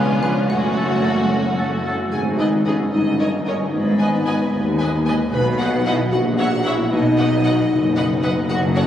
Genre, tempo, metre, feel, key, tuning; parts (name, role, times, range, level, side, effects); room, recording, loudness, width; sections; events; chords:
cinematic; 75 BPM (dotted quarters); 6/8; straight; G# minor; A4 = 440 Hz
clear studio violin section; melody; 0.0-8.8 s; E#4 to G#5; -28 LUFS; left 1 dB
xylophone with plastic mallets; melody; 0.0-1.3 s; E#5 to G#5; -35 LUFS; left 1 dB
clear oboe; second line; 0.0-2.0 s; A4 to B4; -33 LUFS; equal
dark clarinet; second line; 0.0-1.3 s; E#4 to G#4; -35 LUFS; right 1 dB
rich studio violin section; second line; 0.0-8.8 s; B4 to B5; -32 LUFS; left 1 dB
dark bassoon; accompaniment; 0.0-1.7 s; A3 to C#4; -31 LUFS; left 1 dB
rich studio viola section; accompaniment; 0.0-8.8 s; A3 to E5; -26 LUFS; right 1 dB
mellow French horn section; sustained chords; 0.0-8.9 s; E#3 to B4; -22 LUFS; left 2 dB
mellow tuba; bass; 0.0-8.9 s; F#1 to D#2; -24 LUFS; equal
rich studio cello section; bass; 0.0-8.9 s; D#2 to G#3; -23 LUFS; equal
rich studio double bass section; bass; 0.0-8.9 s; F#1 to F#2; -25 LUFS; right 1 dB
silver concert flute; second line; 0.2-1.9 s; E#5 to F#5; -35 LUFS; equal
wet cathedral reverb, RT60 6.2 s; recorded on a phone in the room, club reverb, compression; -16 LUFS; side -10 dB against mid
0.0-2.1 A section; 2.1-8.9 B section
0.5 F#m; 2.1 G#m; 2.9 D#7/G; 3.7 G#m; 5.3 B; 6.1 F#7/A#; 6.9 B